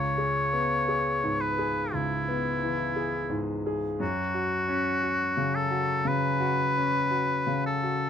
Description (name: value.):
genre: classical, romantic duo for oboe and grand piano.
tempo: 58 BPM.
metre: 4/4.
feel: rubato.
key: unclear.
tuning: A4 = 440 Hz.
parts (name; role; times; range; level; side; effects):
bright oboe; melody; 0.0-8.1 s; E4 to C#5; -27 LUFS; left 1 dB; none.
bright baby grand piano; accompaniment; 0.0-8.1 s; C#2 to G#4; -28 LUFS; left 1 dB; none.
room: light reverb.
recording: close, detailed microphones.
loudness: -25 LUFS.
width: side -8 dB against mid.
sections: 0.0-8.1 A section.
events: none.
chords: 0.0 E/C#; 4.0 F#5.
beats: 0.88 1.93 2.96 | 4.00 5.03 6.05 7.11.